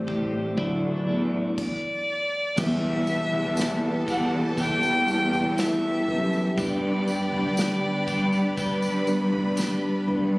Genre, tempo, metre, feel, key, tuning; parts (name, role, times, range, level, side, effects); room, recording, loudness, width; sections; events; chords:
pop ballad; 60 BPM; 4/4; straight; E minor; A4 = 437 Hz
mellow tine electric piano; accompaniment; 0.0-10.4 s; G2 to D5; -29 LUFS; equal; medium stereo tremolo
lush unison pad; sustained chords; 0.0-10.4 s; E3 to B4; -34 LUFS; equal; chorus
twelve-string electric guitar; arpeggios; 0.0-10.4 s; E2 to G4; -33 LUFS; equal; digital delay
rich symphonic cello section; bass; 0.0-10.4 s; D2 to A2; -27 LUFS; equal
unplugged drum kit; drums; 0.1-10.3 s; crash cymbal, kick drum, snare drum, toms; -32 LUFS; equal
dark violin; melody; 1.6-10.1 s; D5 to G5; -28 LUFS; left 1 dB
warm studio violin section; second line; 2.6-10.4 s; G4 to B5; -36 LUFS; equal
tambourine; percussion; 2.6-9.8 s; -41 LUFS; equal
impact; sound effects; 2.6-6.6 s; barely audible
small room ambience; recorded on a phone in the room, club reverb, compression; -22 LUFS; side -22 dB against mid
0.0-2.6 A section; 2.6-10.4 B section
impact 2.6-6.6
0.0 Am7; 0.6 Dadd9; 2.6 Em; 6.6 G